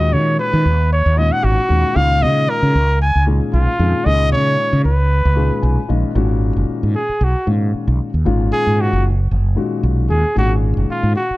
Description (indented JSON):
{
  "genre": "jazz",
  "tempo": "114 BPM",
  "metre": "4/4",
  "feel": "swing 54% on 16ths",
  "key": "G# dorian",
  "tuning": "A4 = 444 Hz",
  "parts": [
    { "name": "warm trumpet", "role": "melody", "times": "0.0-11.4 s", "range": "E#4 to G#5", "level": "-19 LUFS", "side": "equal", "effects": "none" },
    { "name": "dark baby grand piano", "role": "accompaniment", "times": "0.0-11.2 s", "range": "A#2 to G#5", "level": "-22 LUFS", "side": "left 4 dB", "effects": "none" },
    { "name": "mellow fretless electric bass", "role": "bass", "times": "0.0-11.3 s", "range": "F#1 to D#3", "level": "-15 LUFS", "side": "equal", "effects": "none" }
  ],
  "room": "light reverb",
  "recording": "dark, warm production",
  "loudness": "-14 LUFS",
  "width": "side -18 dB against mid",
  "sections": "0.0-6.2 A section; 6.2-11.4 B section",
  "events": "grand piano fill 5.4-6.2; trumpet solo 6.2-11.4",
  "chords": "0.0 B69; 2.0 C#13; 6.2 G#9sus4"
}